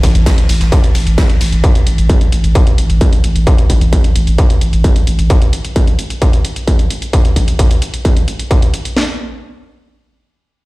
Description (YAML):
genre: driving peak-time techno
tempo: 131 BPM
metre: 4/4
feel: straight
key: A minor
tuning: A4 = 440 Hz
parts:
  - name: saturated sub bass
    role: bass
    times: 0.0-5.3 s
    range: A1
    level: -14 LUFS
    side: equal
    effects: overdrive, sidechain pumping, low-pass filter
  - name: electronic hi-hat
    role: drums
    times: 0.0-8.9 s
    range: none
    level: -24 LUFS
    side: equal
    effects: sidechain pumping on hats
  - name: huge arena drum kit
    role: drums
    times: 0.0-1.5 s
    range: ride cymbal, snare drum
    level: -29 LUFS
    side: left 2 dB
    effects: sidechain pumping on cymbals, high-pass filter on cymbals, high-pass filter on snare, high-pass filter on room
  - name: techno drum kit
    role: drums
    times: 0.0-9.1 s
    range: kick drum, snare drum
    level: -11 LUFS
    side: equal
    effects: distortion
  - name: deep dark ambient pad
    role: texture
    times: 0.0-1.6 s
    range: E4 to A5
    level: -35 LUFS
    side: equal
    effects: none
room: little or no reverb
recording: played on a big sound system in a bare room, large studio reverb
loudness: -10 LUFS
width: side -21 dB against mid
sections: 0.0-9.0 A section; 9.0-10.7 B section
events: fade-out on ambient pad 0.0-1.6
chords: 0.0 Am; 9.0 N.C.